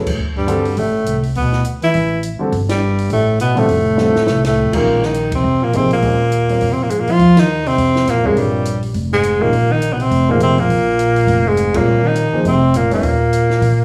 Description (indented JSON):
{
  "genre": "modal jazz",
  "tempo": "205 BPM",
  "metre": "4/4",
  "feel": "swing 60% on 8ths",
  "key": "Bb dorian from 4.9 s",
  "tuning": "A4 = 440 Hz",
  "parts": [
    { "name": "clear tenor saxophone", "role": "melody", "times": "0.0-13.8 s", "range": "G3 to F4", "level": "-19 LUFS", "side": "equal", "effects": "plate reverb" },
    { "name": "mellow bass clarinet", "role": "second line", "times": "0.0-13.8 s", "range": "G2 to F3", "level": "-20 LUFS", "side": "equal", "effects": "none" },
    { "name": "warm grand piano", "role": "accompaniment", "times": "0.0-13.0 s", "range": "C3 to Eb5", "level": "-22 LUFS", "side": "equal", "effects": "none" },
    { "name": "upright bass", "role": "bass", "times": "0.0-13.8 s", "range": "F1 to Bb2", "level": "-23 LUFS", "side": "equal", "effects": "none" },
    { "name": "compact cocktail drum kit", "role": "drums", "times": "0.1-13.7 s", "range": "crash cymbal, hi-hat, kick drum, ride cymbal, snare drum", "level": "-31 LUFS", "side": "equal", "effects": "none" }
  ],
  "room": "moderate studio reverb, RT60 0.6 s",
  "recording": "studio reverb",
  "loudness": "-15 LUFS",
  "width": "mono",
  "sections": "0.0-4.9 A section; 4.9-13.8 B section",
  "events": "band accent 2.7, 4.4, 5.3, 7.3, 11.7; drum fill 4.0-4.6",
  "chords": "0.2 D13sus4; 3.7 F13; 4.9 Bb9sus4; 13.0 Eb5"
}